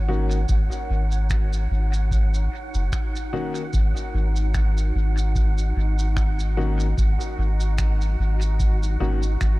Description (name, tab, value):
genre	ambient dub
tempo	74 BPM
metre	4/4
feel	swing 56% on 16ths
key	unclear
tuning	A4 = 440 Hz
part	granular cloud pad	sustained chords	0.0-9.6 s	D#4 to D#5	-36 LUFS	equal	built-in reverb
part	soft dub sub bass	bass	0.0-9.6 s	F#1 to G#1	-21 LUFS	equal	none
part	wind-like tuned noise texture	texture	0.0-9.6 s	F#5	-36 LUFS	right 5 dB	built-in reverb
part	warm upright piano	stabs	0.1-9.2 s	D#3 to F#4	-31 LUFS	left 3 dB	dub echo
part	shaker and finger snaps	drums	0.3-9.6 s	none	-38 LUFS	right 1 dB	dub echo
part	electronic kick drum	drums	0.5-9.6 s	none	-26 LUFS	equal	none
room	little or no reverb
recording	none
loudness	-20 LUFS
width	side -20 dB against mid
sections	0.0-9.6 A section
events	none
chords	0.0 D#m7